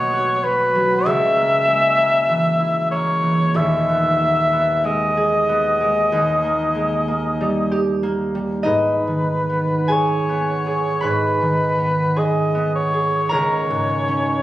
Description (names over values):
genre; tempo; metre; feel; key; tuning
classical, romantic duo for cor anglais and harp; 46-54 BPM; 4/4; rubato; G# minor; A4 = 444 Hz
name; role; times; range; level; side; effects
mellow cor anglais; melody; 0.0-14.4 s; B4 to E5; -18 LUFS; left 1 dB; none
concert harp; accompaniment; 0.0-14.4 s; D#1 to B5; -20 LUFS; right 1 dB; none
room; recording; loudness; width
wet recital hall reverb, RT60 1.7 s; recorded on a phone in the room, club ambience, compression; -16 LUFS; side -15 dB against mid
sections
0.0-8.7 A section; 8.7-14.4 B section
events
none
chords
0.0 B5; 1.1 A#dim/C#; 3.6 G#m/D#; 6.1 D#; 8.7 G#m; 13.3 C#5